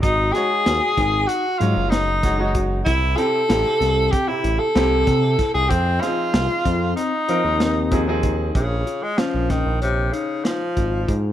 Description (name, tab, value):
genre	progressive instrumental, band music in an uneven meter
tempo	190 BPM (eighths)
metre	9/8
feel	straight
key	Bb minor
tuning	A4 = 440 Hz
part	bright tenor saxophone	melody	0.0-11.2 s	C3 to A4	-21 LUFS	equal	plate reverb, digital delay
part	clear baby grand piano	accompaniment	0.0-8.6 s	C3 to Db5	-27 LUFS	equal	none
part	bell-like tine electric piano	arpeggios	0.0-11.3 s	Gb3 to Db5	-28 LUFS	left 6 dB	digital delay
part	smooth synth bass	bass	0.0-11.3 s	Gb1 to F3	-22 LUFS	right 1 dB	none
part	crunchy breakbeat drum kit	drums	0.0-11.2 s	hi-hat, kick drum, snare drum	-23 LUFS	equal	none
room	moderate studio reverb, RT60 0.5 s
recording	none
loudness	-17 LUFS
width	side -11 dB against mid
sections	0.0-8.6 A section; 8.6-11.3 B section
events	none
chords	0.0 Ab7sus4; 2.9 C; 5.7 Fm7; 8.6 Bbm7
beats	| 0.03 0.35 0.66 0.98 1.29 1.61 1.92 2.24 2.55 | 2.87 3.18 3.50 3.81 4.13 4.44 4.76 5.07 5.39 | 5.71 6.02 6.34 6.65 6.97 7.28 7.60 7.92 8.23 | 8.55 8.87 9.18 9.50 9.82 10.13 10.45 10.77 11.09